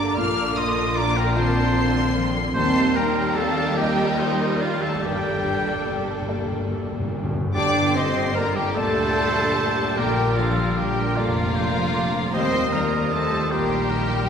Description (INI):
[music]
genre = cinematic, emotional film score for orchestra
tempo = 47-52 BPM (dotted quarters)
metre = 6/8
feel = rubato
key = G minor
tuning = A4 = 438 Hz
[part]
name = rich symphonic violin section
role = melody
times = 0.0-14.3 s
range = Eb5 to F6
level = -28 LUFS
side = left 2 dB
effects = none
[part]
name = clear oboe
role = second line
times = 0.0-14.3 s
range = Eb4 to F5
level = -28 LUFS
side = right 2 dB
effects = none
[part]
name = silver concert flute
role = second line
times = 0.0-14.3 s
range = A4 to D6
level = -30 LUFS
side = left 1 dB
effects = none
[part]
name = warm symphonic violin section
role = second line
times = 0.0-14.3 s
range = D4 to D5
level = -30 LUFS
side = left 1 dB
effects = none
[part]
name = rich symphonic viola section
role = accompaniment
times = 0.0-14.3 s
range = D3 to Bb3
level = -30 LUFS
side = right 1 dB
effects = none
[part]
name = warm grand piano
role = accompaniment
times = 0.0-14.3 s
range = Eb2 to Eb5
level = -30 LUFS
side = left 2 dB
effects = none
[part]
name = dark French horn section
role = sustained chords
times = 0.0-14.3 s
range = Bb2 to A4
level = -29 LUFS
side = equal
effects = none
[part]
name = concert harp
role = arpeggios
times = 0.0-14.3 s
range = G2 to A5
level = -30 LUFS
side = left 4 dB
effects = none
[part]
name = dark studio double bass section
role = bass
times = 0.0-14.3 s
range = F1 to Eb2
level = -29 LUFS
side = right 1 dB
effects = none
[part]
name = warm studio cello section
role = bass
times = 0.0-14.3 s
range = Eb2 to D4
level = -29 LUFS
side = right 1 dB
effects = none
[part]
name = timpani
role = percussion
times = 5.0-8.7 s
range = G2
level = -31 LUFS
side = equal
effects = none
[part]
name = clear clarinet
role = second line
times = 7.5-14.3 s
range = F4 to D5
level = -30 LUFS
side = left 1 dB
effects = none
[sound]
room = wet church reverb, RT60 3.1 s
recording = recorded in a church or concert hall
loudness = -19 LUFS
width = side -7 dB against mid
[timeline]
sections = 0.0-7.5 A section; 7.5-14.3 B section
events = timpani fill 5.0-7.5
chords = 0.2 Bb; 2.6 Eb; 5.0 Gmadd9; 10.0 Bb; 12.3 Eb